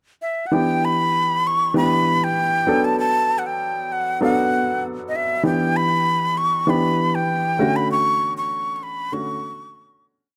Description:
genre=soul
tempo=98 BPM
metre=4/4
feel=straight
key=E dorian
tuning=A4 = 442 Hz
part: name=breathy jazz flute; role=melody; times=0.2-10.1 s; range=D#5 to C#6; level=-22 LUFS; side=equal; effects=none
part: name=warm baby grand piano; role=accompaniment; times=0.5-10.4 s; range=D3 to A4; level=-24 LUFS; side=equal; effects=none
room=light reverb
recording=none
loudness=-20 LUFS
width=mono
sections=0.0-0.5 pickup bar; 0.5-10.4 verse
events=fade-out 7.9-10.4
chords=0.0 N.C.; 0.5 Em7; 2.7 Bm7; 5.4 Em7; 7.6 Dmaj7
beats=| 0.52 1.13 1.75 2.37 | 2.98 3.60 4.21 4.83 | 5.45 6.06 6.67 7.29 | 7.90 8.52 9.13 9.74

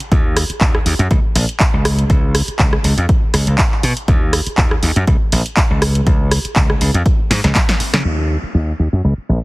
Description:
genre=filtered disco house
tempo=121 BPM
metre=4/4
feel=swing 54% on 16ths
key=Eb minor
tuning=A4 = 439 Hz
part: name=punchy analog drum machine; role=drums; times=0.0-9.4 s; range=cabasa, handclaps, hi-hat, rim click, snare drum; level=-19 LUFS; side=right 1 dB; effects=sidechain pumping on hats, low-pass filter on hats, low-pass filter on snare, sidechain pumping on perc, low-pass filter on perc, low-pass filter on room
part: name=slap bass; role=bass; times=0.1-9.4 s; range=Bb1 to Db3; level=-16 LUFS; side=equal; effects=sidechain pumping, low-pass filter
part: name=electronic kick drum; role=drums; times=0.1-7.7 s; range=none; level=-15 LUFS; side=equal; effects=none
room=little or no reverb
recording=heavily compressed radio sound, multiband compression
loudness=-13 LUFS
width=side -22 dB against mid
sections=0.0-8.0 A section; 8.0-9.4 B section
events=drum fill 7.3-8.0; band accent 7.9; filter sweep on slap bass 8.0-9.4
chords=none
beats=| 0.12 0.61 1.11 1.60 | 2.10 2.60 3.09 3.59 | 4.08 4.58 5.07 5.57 | 6.07 6.56 7.06 7.55 | 8.05 8.54 9.04

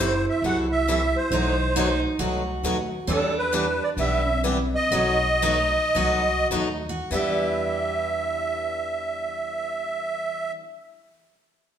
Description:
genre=acoustic string swing (jazz manouche)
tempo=95-136 BPM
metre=4/4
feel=swing 64% on 8ths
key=unclear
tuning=A4 = 440 Hz
part: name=musette accordion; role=melody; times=0.0-10.5 s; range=A4 to F#5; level=-24 LUFS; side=right 2 dB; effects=none
part: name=picked steel-string acoustic guitar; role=second line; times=0.0-10.5 s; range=D4 to G4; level=-29 LUFS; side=right 2 dB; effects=none
part: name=picked steel-string acoustic guitar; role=accompaniment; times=0.0-10.7 s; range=B2 to B4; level=-32 LUFS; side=right 3 dB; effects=none
part: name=picked swing-style acoustic guitar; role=accompaniment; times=0.0-10.6 s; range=B2 to G4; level=-30 LUFS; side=left 4 dB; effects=none
part: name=upright bass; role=bass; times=0.0-10.5 s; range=F#1 to E2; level=-30 LUFS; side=left 1 dB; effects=none
room=wet large studio reverb, RT60 1.4 s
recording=band playing live in one room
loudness=-22 LUFS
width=side -9 dB against mid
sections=0.0-7.1 A section; 7.1-11.8 B section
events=slowing down 3.1-7.1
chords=0.0 F#m7b5; 1.3 B7b9; 3.1 Em7; 4.9 B7b9; 7.1 Em7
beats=0.43 0.87 | 1.31 1.75 2.19 2.63 | 3.08 3.52 3.97 4.43 | 4.92 5.42 5.95 6.51 | 7.11 7.74 8.37 9.00 | 9.63 10.26

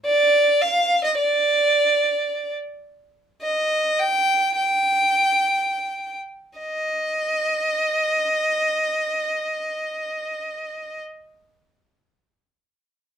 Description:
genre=folk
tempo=81-107 BPM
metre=3/4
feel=straight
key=Eb major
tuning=A4 = 438 Hz
part: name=clear violin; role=melody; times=0.1-11.0 s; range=D5 to G5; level=-19 LUFS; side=right 1 dB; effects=none
room=moderate studio ambience, RT60 0.4 s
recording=minimal, uncompressed stereo recording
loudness=-19 LUFS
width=side -9 dB against mid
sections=0.0-6.6 A section; 6.6-11.0 B section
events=slowing down 2.8-6.6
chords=none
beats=0.03 0.59 | 1.15 1.71 2.27 | 2.83 3.40 3.97 | 4.57 5.20 5.86 | 6.58 7.31 8.05 | 8.79 9.52 10.26

